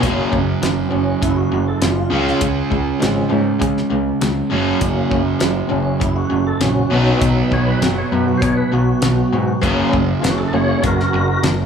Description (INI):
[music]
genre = classic rock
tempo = 100 BPM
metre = 4/4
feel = straight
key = F# major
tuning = A4 = 440 Hz
[part]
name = tonewheel organ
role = sustained chords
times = 0.0-11.4 s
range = E#3 to C#5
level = -22 LUFS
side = left 1 dB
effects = slow rotary speaker, overdrive, chorus vibrato
[part]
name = biting overdriven guitar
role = riff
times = 0.0-11.7 s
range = F#2 to C#4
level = -22 LUFS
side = left 6 dB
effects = none
[part]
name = crunchy overdriven guitar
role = riff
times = 0.0-11.7 s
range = F#2 to C#4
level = -20 LUFS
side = right 6 dB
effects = none
[part]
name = growling picked electric bass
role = bass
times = 0.0-11.6 s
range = F#1 to C#3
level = -22 LUFS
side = left 1 dB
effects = overdrive
[part]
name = damped 70s drum kit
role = drums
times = 0.0-11.6 s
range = hi-hat, kick drum, snare drum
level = -22 LUFS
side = equal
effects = none
[part]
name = cowbell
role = percussion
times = 9.6-11.6 s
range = none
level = -30 LUFS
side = left 10 dB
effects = none
[sound]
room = light reverb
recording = small room ambience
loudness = -15 LUFS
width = side -7 dB against mid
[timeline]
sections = 0.0-11.7 A section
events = tonewheel organ solo 0.0-11.7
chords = 0.0 F#; 2.1 C#; 4.5 F#; 6.9 B; 9.6 F#